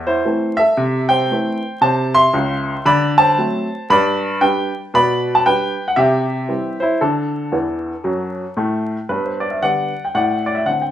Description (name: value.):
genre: jazz, stride piano.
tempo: 115 BPM.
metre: 4/4.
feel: swing 61% on 8ths.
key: G major.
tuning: A4 = 440 Hz.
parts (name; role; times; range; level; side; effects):
warm upright piano; solo; 0.0-10.9 s; C#2 to C6; -15 LUFS; equal; none.
room: wet studio reverb, RT60 0.7 s.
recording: band playing live in one room, vinyl crackle.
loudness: -15 LUFS.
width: side -11 dB against mid.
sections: 0.0-9.1 A section; 9.1-10.9 B section.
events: upright piano fill 7.5-9.1.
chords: 0.0 Am; 0.8 Am/C; 2.9 D7; 3.9 G; 4.9 G/B; 6.0 C; 7.0 D; 9.1 G; 10.1 D5/A.